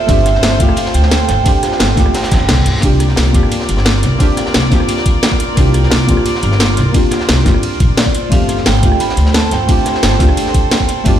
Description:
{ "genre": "liquid drum and bass", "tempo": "175 BPM", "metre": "4/4", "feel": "straight", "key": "unclear", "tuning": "A4 = 440 Hz", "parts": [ { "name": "vibraphone with medium hard mallets", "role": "melody", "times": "0.0-2.6, 8.0-11.2 s", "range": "D5 to B5", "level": "-20 LUFS", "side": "right 5 dB", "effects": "ping-pong delay" }, { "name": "deep mellow chord stab", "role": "accompaniment", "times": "0.0-11.2 s", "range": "A3 to G4", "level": "-19 LUFS", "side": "left 1 dB", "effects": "chorus, dub echo" }, { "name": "rich chamber string section", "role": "sustained chords", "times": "0.0-11.2 s", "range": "F4 to D5", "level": "-22 LUFS", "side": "equal", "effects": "sidechain pumping" }, { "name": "upright bass", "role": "bass", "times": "0.1-11.2 s", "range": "G1 to G2", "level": "-14 LUFS", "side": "equal", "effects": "none" }, { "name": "crunchy breakbeat drum kit", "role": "drums", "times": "0.1-11.1 s", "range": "hi-hat, snare drum", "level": "-25 LUFS", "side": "equal", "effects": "high-pass filter on hats, high-pass filter on snare, high-pass filter on room" }, { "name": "drum and bass drum kit", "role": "drums", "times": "0.1-11.1 s", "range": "hi-hat, ride cymbal, rim click, snare drum", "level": "-18 LUFS", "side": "equal", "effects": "none" }, { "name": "electronic kick drum", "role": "drums", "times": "0.1-11.1 s", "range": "none", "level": "-14 LUFS", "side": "equal", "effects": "none" }, { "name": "reverse cymbal", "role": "sound effects", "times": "2.3-2.8 s", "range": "none", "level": "-28 LUFS", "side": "left 2 dB", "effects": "none" } ], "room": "little or no reverb", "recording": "played on a big sound system in a bare room, large studio reverb", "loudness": "-10 LUFS", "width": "side -10 dB against mid", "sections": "0.0-11.2 A section", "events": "reverse cymbal 2.3-2.8", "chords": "0.0 G9sus4; 2.8 C9sus4; 8.1 G9sus4", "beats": "| 0.09 0.43 0.77 1.12 | 1.46 1.80 2.14 2.49 | 2.83 3.17 3.52 3.86 | 4.20 4.54 4.89 5.23 | 5.57 5.92 6.26 6.60 | 6.94 7.29 7.63 7.97 | 8.32 8.66 9.00 9.34 | 9.69 10.03 10.37 10.72 | 11.06" }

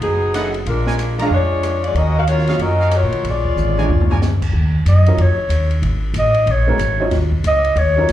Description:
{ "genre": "jazz, big band swing", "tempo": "186 BPM", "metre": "4/4", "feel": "swing 63% on 8ths", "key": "Eb minor", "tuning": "A4 = 440 Hz", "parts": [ { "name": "mellow saxophone section", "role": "melody", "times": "0.0-4.2 s", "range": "F#3 to F5", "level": "-19 LUFS", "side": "left 2 dB", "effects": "slapback echo" }, { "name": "upright bass", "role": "bass", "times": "0.0-8.1 s", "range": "F#1 to Bb2", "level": "-16 LUFS", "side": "equal", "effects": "none" }, { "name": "open jazz drum kit", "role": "drums", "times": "0.0-8.1 s", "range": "crash cymbal, hi-hat, kick drum, ride cymbal, rim click, snare drum, toms", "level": "-25 LUFS", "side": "left 1 dB", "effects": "none" }, { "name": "clear upright piano", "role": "accompaniment", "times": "0.3-8.1 s", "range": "F3 to Db5", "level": "-22 LUFS", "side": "right 3 dB", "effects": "slapback echo" }, { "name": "bright trumpet section", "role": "stabs", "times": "0.3-4.2 s", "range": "Gb4 to Bb5", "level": "-28 LUFS", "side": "right 4 dB", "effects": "slapback echo" }, { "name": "growling clarinet", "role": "melody", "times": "4.9-8.1 s", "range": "Db5 to Eb5", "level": "-17 LUFS", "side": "equal", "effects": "slapback echo" } ], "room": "light reverb", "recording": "live gig heard through the venue's PA, club reverb", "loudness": "-14 LUFS", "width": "side -12 dB against mid", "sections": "0.0-4.5 A section; 4.5-8.1 B section", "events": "drum fill 3.6-4.2; clarinet solo 4.5-8.1", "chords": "0.0 B7; 0.7 Bb7#9; 2.0 Ebm9; 3.2 Bb7#9; 4.5 Ebm9; 5.8 Ab7sus2; 7.1 Eb7(no3)", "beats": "0.02 0.34 | 0.66 0.99 1.31 1.63 | 1.96 2.28 2.60 2.92 | 3.25 3.57 3.89 4.21 | 4.54 4.86 5.18 5.51 | 5.83 6.15 6.47 6.80 | 7.12 7.44 7.76 8.09" }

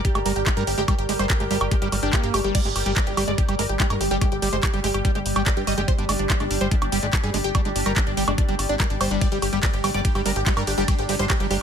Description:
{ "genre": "psychedelic trance", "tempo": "144 BPM", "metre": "4/4", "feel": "straight", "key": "G phrygian", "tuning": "A4 = 440 Hz", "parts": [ { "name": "supersaw stab", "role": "melody", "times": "0.0-11.6 s", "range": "D4 to Eb5", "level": "-28 LUFS", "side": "equal", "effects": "phaser, sidechain pumping, tape echo" }, { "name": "overtone-sweeping drone", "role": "sustained chords", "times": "0.0-11.6 s", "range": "G3 to Bb4", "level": "-31 LUFS", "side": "right 1 dB", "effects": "chorus, built-in reverb, phaser, vintage 12-bit sampler grit, sidechain pumping" }, { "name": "drum and bass drum kit", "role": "drums", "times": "0.0-11.6 s", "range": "crash cymbal, handclaps, hi-hat, ride cymbal, woodblock", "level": "-27 LUFS", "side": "right 1 dB", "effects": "none" }, { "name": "electronic kick drum", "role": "drums", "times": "0.0-11.4 s", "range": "none", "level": "-22 LUFS", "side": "equal", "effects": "none" }, { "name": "warbly tape-like pad", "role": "texture", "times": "0.0-11.6 s", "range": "G4 to Bb5", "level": "-32 LUFS", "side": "right 1 dB", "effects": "chorus, built-in reverb, sidechain pumping" }, { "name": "overdriven acid bass", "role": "riff", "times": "0.2-11.6 s", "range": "G3 to D4", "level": "-28 LUFS", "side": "moving between left 4 dB and right 5 dB", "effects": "auto-pan, sidechain pumping, tape echo" }, { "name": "plucky analog bass", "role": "bass", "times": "0.2-11.6 s", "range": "G1 to G2", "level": "-28 LUFS", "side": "equal", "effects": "tube saturation" } ], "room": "light reverb", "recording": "none", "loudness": "-20 LUFS", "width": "side -8 dB against mid", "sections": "0.0-11.6 A section", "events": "none", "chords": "0.0 G5", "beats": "0.05 0.47 | 0.88 1.30 1.72 2.13 | 2.55 2.96 3.38 3.80 | 4.21 4.63 5.05 5.46 | 5.88 6.30 6.71 7.13 | 7.55 7.96 8.38 8.80 | 9.21 9.63 10.05 10.46 | 10.88 11.30" }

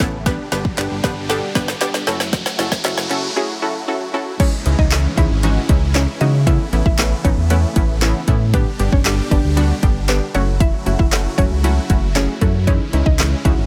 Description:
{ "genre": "dance-pop", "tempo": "116 BPM", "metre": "4/4", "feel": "straight", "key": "unclear", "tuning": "A4 = 441 Hz", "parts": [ { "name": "punchy chord stab", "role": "accompaniment", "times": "0.0-13.6 s", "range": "D3 to D5", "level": "-25 LUFS", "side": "equal", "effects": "chorus, sidechain pumping" }, { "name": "supersaw chords", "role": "sustained chords", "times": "0.0-13.7 s", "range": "B2 to G4", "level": "-30 LUFS", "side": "equal", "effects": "phaser, sidechain pumping" }, { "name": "round analog bass", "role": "bass", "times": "0.0-13.7 s", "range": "F#1 to C#3", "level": "-21 LUFS", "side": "equal", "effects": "sidechain pumping" }, { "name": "deep house drum kit", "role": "drums", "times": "0.0-13.6 s", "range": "crash cymbal, handclaps, hi-hat, kick drum, snare drum", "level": "-20 LUFS", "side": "equal", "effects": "none" }, { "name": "riser and downlifter", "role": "sound effects", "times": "0.2-8.5 s", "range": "none", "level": "-32 LUFS", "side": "equal", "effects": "none" }, { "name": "group handclap", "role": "percussion", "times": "0.8-13.3 s", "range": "none", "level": "-31 LUFS", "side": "equal", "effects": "none" }, { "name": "mallet-like synth pluck", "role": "melody", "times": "4.4-13.7 s", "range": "A3 to E5", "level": "-27 LUFS", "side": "equal", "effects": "chorus, sidechain pumping" } ], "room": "little or no reverb", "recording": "high-pass filter", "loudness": "-17 LUFS", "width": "mono", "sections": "0.0-4.4 A section; 4.4-13.7 B section", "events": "build-up 0.0-4.4; drum fill 0.0-3.4; riser 0.2-4.4; break 3.4-4.4; drop 4.4-13.7", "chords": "0.3 G; 2.1 F#m7; 4.4 C#madd9; 6.5 Aadd9; 8.5 G; 10.3 F#m7; 12.7 C#madd9", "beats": "| 0.26 0.78 1.29 1.81 | 2.33 2.85 3.36 3.88 | 4.40 4.92 5.43 5.95 | 6.47 6.99 7.50 8.02 | 8.54 9.05 9.57 10.09 | 10.61 11.12 11.64 12.16 | 12.67 13.19" }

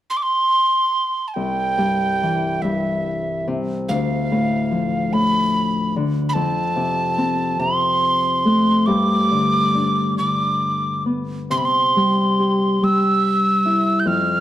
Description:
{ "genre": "celtic folk, Celtic slow air", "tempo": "44-51 BPM (dotted quarters)", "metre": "6/8", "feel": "rubato", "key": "C major", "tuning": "A4 = 440 Hz", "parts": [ { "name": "breathy mellow wooden whistle", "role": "melody", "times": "0.1-14.4 s", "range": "E5 to G6", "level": "-19 LUFS", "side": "right 1 dB", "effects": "none" }, { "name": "Celtic harp", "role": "accompaniment", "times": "1.4-14.4 s", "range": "C2 to G4", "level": "-20 LUFS", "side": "left 2 dB", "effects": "none" } ], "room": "moderate recital hall reverb, RT60 1.4 s", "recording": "dark, warm production", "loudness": "-17 LUFS", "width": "side -12 dB against mid", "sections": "0.0-1.4 A section; 1.4-14.4 B section", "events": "none", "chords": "0.0 N.C.; 1.4 C; 3.9 Dm; 6.4 F; 8.9 G; 11.5 C", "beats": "0.10 | 1.36 2.64 | 3.90 5.13 | 6.36 7.60 | 8.88 10.19 | 11.53 12.84 | 14.07" }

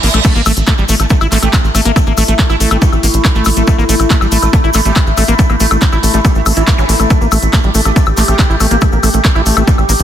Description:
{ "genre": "psychedelic trance", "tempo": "140 BPM", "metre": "4/4", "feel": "straight", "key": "unclear", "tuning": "A4 = 442 Hz", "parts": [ { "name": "metallic wobble bass", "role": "second line", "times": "0.0-9.9 s", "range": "E3 to A3", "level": "-27 LUFS", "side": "right 2 dB", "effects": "ensemble chorus, sidechain pumping, high-pass filter, dub echo" }, { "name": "liquid acid bass", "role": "riff", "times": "0.0-9.9 s", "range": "G3 to E4", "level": "-17 LUFS", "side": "moving between left 4 dB and right 3 dB", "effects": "chorus, auto-pan, sidechain pumping, tape echo" }, { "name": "tight sequencer bass", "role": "bass", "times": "0.0-10.0 s", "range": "A1 to Bb1", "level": "-13 LUFS", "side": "equal", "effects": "tube saturation" }, { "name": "techno drum kit", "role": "drums", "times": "0.0-10.0 s", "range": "crash cymbal, handclaps, hi-hat, woodblock", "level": "-17 LUFS", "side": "left 3 dB", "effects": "none" }, { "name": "reverse cymbal and zap", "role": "sound effects", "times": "0.0-0.2, 6.8-6.9 s", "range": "none", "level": "-21 LUFS", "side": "right 5 dB", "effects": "none" }, { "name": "overtone-sweeping drone", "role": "sustained chords", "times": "0.9-10.0 s", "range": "A3 to G4", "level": "-18 LUFS", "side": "equal", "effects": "chorus, built-in reverb, phaser, vintage 12-bit sampler grit, sidechain pumping" }, { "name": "electronic kick drum", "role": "drums", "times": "0.2-9.8 s", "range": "none", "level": "-11 LUFS", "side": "equal", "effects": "none" }, { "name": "tube shaker", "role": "percussion", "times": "0.2-10.0 s", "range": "none", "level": "-25 LUFS", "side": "left 5 dB", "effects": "none" } ], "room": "light reverb", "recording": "dense, heavily limited modern master", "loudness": "-9 LUFS", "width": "side -10 dB against mid", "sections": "0.0-10.0 A section", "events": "reverse cymbal 0.0", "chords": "0.0 A5", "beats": "| 0.25 0.68 1.10 1.53 | 1.96 2.39 2.82 3.25 | 3.67 4.10 4.53 4.96 | 5.39 5.82 6.25 6.67 | 7.10 7.53 7.96 8.39 | 8.82 9.25 9.68" }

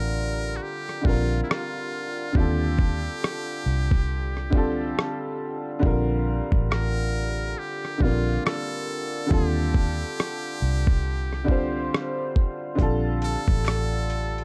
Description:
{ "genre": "lo-fi hip hop", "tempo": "69 BPM", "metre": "4/4", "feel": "swing 58% on 16ths", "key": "Bb major", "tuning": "A4 = 440 Hz", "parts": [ { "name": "trumpet with metal mute", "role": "melody", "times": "0.0-14.4 s", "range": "E4 to Bb4", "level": "-36 LUFS", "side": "equal", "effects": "tape echo" }, { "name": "bright upright piano", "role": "accompaniment", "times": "0.0-14.4 s", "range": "D3 to C5", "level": "-31 LUFS", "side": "equal", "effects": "none" }, { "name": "vintage muted fingered electric bass", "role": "bass", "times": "0.0-14.4 s", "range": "A1 to Eb2", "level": "-28 LUFS", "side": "equal", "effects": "none" }, { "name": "dusty soul sampler-style drum kit", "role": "drums", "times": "0.9-14.4 s", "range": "hi-hat, kick drum, rim click", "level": "-24 LUFS", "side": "equal", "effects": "overdrive" }, { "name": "finger snaps", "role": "percussion", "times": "13.6-13.9 s", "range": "none", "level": "-46 LUFS", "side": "equal", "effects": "none" } ], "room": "little or no reverb", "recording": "dark, warm production", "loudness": "-25 LUFS", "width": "mono", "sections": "0.0-14.4 A section", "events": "break 0.0-12.8", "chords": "0.0 Bbmaj7; 2.4 Eb69; 5.8 Bbmaj7; 9.3 Eb69; 12.8 Bbmaj7", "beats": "0.61 1.48 | 2.35 3.22 4.09 4.96 | 5.83 6.70 7.57 8.44 | 9.31 10.18 11.05 11.91 | 12.79 13.65" }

